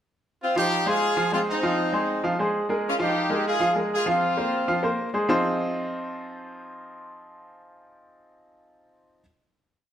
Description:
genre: latin.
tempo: 196 BPM.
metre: 4/4.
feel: straight.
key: F minor.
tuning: A4 = 440 Hz.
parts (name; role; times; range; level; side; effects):
brilliant horn section; melody; 0.4-5.0 s; C4 to Ab4; -24 LUFS; equal; none.
bright upright piano; accompaniment; 0.6-9.2 s; F3 to F5; -25 LUFS; equal; none.
room: wet large studio reverb, RT60 1.3 s.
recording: none.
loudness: -22 LUFS.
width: side -10 dB against mid.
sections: 0.4-5.3 verse; 5.3-7.7 final chord.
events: none.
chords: 0.4 Fm7; 2.8 Bb7(no3); 4.1 C7sus4; 5.3 Fm7.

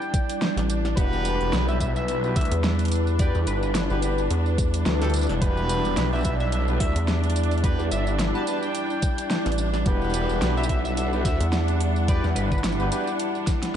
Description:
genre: glitch hop.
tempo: 108 BPM.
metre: 4/4.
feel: swing 56% on 16ths.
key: E minor.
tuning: A4 = 441 Hz.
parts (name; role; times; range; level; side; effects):
sync lead; melody; 0.0-12.6 s; B4 to A5; -34 LUFS; left 1 dB; chorus, vintage 12-bit sampler grit, analog delay.
dark analog pad; sustained chords; 0.0-13.8 s; G3 to F#5; -29 LUFS; equal; chorus, phaser, vintage 12-bit sampler grit, sidechain pumping.
pop drum kit; drums; 0.0-13.7 s; hi-hat, snare drum, tambourine; -30 LUFS; equal; overdrive.
clear studio string section; texture; 0.0-13.8 s; D4; -34 LUFS; right 1 dB; sidechain pumping.
electronic kick drum; drums; 0.1-13.6 s; none; -24 LUFS; equal; overdrive.
rubbery square bass; bass; 0.6-12.2 s; G1 to E2; -23 LUFS; equal; tube saturation.
mellow horn section; stabs; 1.0-13.1 s; A3 to B4; -31 LUFS; equal; sidechain pumping, analog delay.
phased detuned saw bass; bass; 1.0-12.9 s; E1 to E2; -25 LUFS; equal; phaser, overdrive.
room: light reverb.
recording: nothing above 10.7 kHz.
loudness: -21 LUFS.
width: side -9 dB against mid.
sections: 0.0-13.8 A section.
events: drum fill 13.5.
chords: 0.0 Em9.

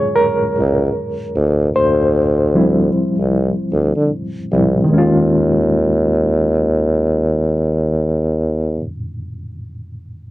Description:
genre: R&B, neo-soul.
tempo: 76 BPM.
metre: 4/4.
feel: swing 59% on 16ths.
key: unclear.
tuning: A4 = 442 Hz.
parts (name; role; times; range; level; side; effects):
reed electric piano; accompaniment; 0.0-10.3 s; Eb3 to Db5; -18 LUFS; equal; fast tremolo.
clear tuba; bass; 0.4-8.8 s; C2 to D3; -15 LUFS; equal; none.
room: studio ambience.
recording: dark, warm production.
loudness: -14 LUFS.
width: side -17 dB against mid.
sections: 0.0-4.9 A section; 4.9-8.1 B section.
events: reed electric piano solo 0.0-4.9.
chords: 0.0 Ebm11 (rootless); 1.3 Dm11; 4.9 Eb9sus4.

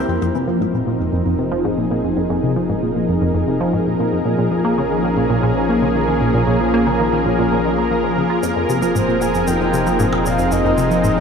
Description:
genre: ambient, sequencer-driven space music.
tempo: 115 BPM.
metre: 4/4.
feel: straight.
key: F minor.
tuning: A4 = 440 Hz.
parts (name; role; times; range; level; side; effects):
lush unison pad; sustained chords; 0.0-11.2 s; F3 to Bb4; -18 LUFS; equal; chorus.
concert harp; arpeggios; 0.0-2.8 s; C4 to C5; -33 LUFS; left 3 dB; auto-pan, ping-pong delay.
warm sub bass; bass; 0.0-11.2 s; F1 to Bb1; -30 LUFS; equal; tube saturation.
wind-like tuned noise texture; texture; 0.0-11.2 s; Bb3 to Bb4; -34 LUFS; equal; none.
tight sequenced synth; riff; 0.1-11.2 s; F2 to F4; -20 LUFS; equal; chorus, ping-pong delay.
shaker and percussion blips; percussion; 8.4-11.1 s; none; -33 LUFS; equal; overdrive, ping-pong delay.
breathy flute-like synth lead; melody; 9.0-11.2 s; C5 to Ab5; -21 LUFS; left 1 dB; chorus, ping-pong delay.
room: wet cathedral reverb, RT60 4.7 s.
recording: in a vast, echoing space.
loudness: -15 LUFS.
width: side -6 dB against mid.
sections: 0.1-11.2 A section.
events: fade-in on sub bass 0.1-11.2.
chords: 0.1 Fm7; 4.3 Bbm7; 8.4 Fm7.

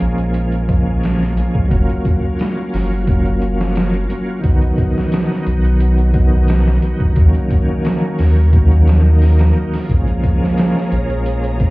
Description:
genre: trip hop.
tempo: 88 BPM.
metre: 4/4.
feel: straight.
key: Bb phrygian.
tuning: A4 = 441 Hz.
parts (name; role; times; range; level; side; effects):
bright tonewheel organ; accompaniment; 0.0-11.7 s; D#3 to F4; -19 LUFS; equal; overdrive, chorus vibrato, slow rotary speaker, tremolo, tape echo.
soft dub sub bass; bass; 0.0-11.7 s; Gb1 to Eb2; -14 LUFS; equal; none.
trip hop sampler-style drum kit; drums; 0.0-11.7 s; hi-hat, kick drum, snare drum; -17 LUFS; equal; overdrive.
tube shaker; percussion; 0.0-11.7 s; none; -62 LUFS; right 2 dB; none.
rich chamber string section; sustained chords; 9.9-11.7 s; Ab4 to Bb5; -27 LUFS; right 2 dB; vintage 12-bit sampler grit.
room: little or no reverb.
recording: heard muffled through a wall, club reverb, vinyl crackle, EQ.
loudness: -13 LUFS.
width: side -21 dB against mid.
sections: 0.0-11.7 A section.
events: none.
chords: 0.0 Bbm7; 1.7 Gbmaj7; 4.4 B; 7.2 Ebm7; 9.9 Bbm7.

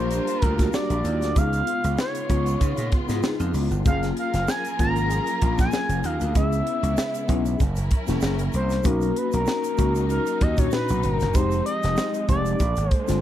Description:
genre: polished 1980s jazz-funk pop.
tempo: 96 BPM.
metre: 4/4.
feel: swing 54% on 16ths.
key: unclear.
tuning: A4 = 440 Hz.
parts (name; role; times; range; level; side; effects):
expressive synth lead; melody; 0.0-13.2 s; A#4 to Bb5; -27 LUFS; equal; chorus, slapback echo.
tine electric piano; accompaniment; 0.0-13.2 s; A#2 to Ab4; -27 LUFS; left 2 dB; medium stereo tremolo, ensemble chorus.
warm studio string section; sustained chords; 0.0-13.2 s; Db3 to Bb4; -34 LUFS; equal; none.
gritty slap bass; bass; 0.0-13.2 s; Fb1 to Db3; -25 LUFS; right 1 dB; overdrive.
crisp fusion drum kit; drums; 0.1-13.2 s; hi-hat, kick drum, snare drum; -24 LUFS; equal; none.
tube shaker; percussion; 0.1-13.2 s; none; -44 LUFS; right 18 dB; none.
room: small room reverb.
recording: dry, close 1970s-style studio recording.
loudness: -20 LUFS.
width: side -12 dB against mid.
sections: 0.0-13.2 A section.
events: none.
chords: 0.0 Gm7; 1.4 Db7; 3.9 Gbmaj9; 6.4 Dbm7; 7.6 Gb7; 8.9 Bmaj7; 11.3 Fm7; 12.6 Bb7.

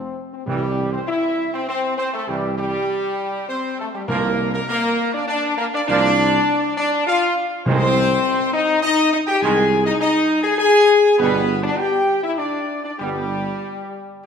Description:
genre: classical.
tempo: 100 BPM.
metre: 3/4.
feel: straight.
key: unclear.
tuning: A4 = 440 Hz.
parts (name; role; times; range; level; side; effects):
bright trombone section; sustained chords; 0.0-13.2 s; B2 to Bb3; -27 LUFS; right 4 dB; none.
clear French horn section; sustained chords; 0.0-14.3 s; G3 to Ab4; -19 LUFS; left 2 dB; none.
dark tuba; bass; 0.0-13.5 s; F1 to C2; -26 LUFS; right 3 dB; none.
clear trumpet section; melody; 0.5-14.1 s; G4 to Ab5; -24 LUFS; right 2 dB; none.
timpani; percussion; 0.5-8.5 s; C3; -27 LUFS; right 1 dB; none.
room: wet scoring stage reverb, RT60 1.7 s.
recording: none.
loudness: -17 LUFS.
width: side -7 dB against mid.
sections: 0.5-14.3 A section.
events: none.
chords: 0.5 C; 4.1 Bb/C; 7.7 Ab/C; 11.2 G.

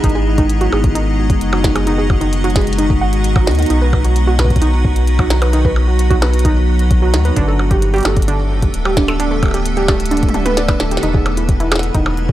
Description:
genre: IDM.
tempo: 131 BPM.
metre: 4/4.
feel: straight.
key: unclear.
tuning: A4 = 437 Hz.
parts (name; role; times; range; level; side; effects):
icy glass pad; sustained chords; 0.0-12.3 s; D3 to A4; -20 LUFS; equal; chorus, built-in reverb.
warbly dusty pluck; arpeggios; 0.0-12.0 s; D4 to F#5; -19 LUFS; right 3 dB; chorus, tape echo.
warm sub bass; bass; 0.0-12.3 s; D1 to D#2; -16 LUFS; equal; none.
electronic kick drum; drums; 0.0-12.3 s; none; -17 LUFS; equal; small room ambience.
glitchy drum kit; drums; 0.0-12.3 s; hi-hat, percussion blips, snare drum, toms; -21 LUFS; equal; small room ambience.
bubbling stepped-filter texture; texture; 11.0-12.3 s; B3 to B4; -30 LUFS; equal; chorus, built-in reverb.
room: digital ambience.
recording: dry, gritty hardware recording.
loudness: -12 LUFS.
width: side -14 dB against mid.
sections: 0.0-11.0 A section; 11.0-12.3 A section.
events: drum fill 10.1-11.0; band accent 11.0.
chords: 0.0 G#m7; 3.7 B; 7.4 Gadd9; 11.0 Emaj7.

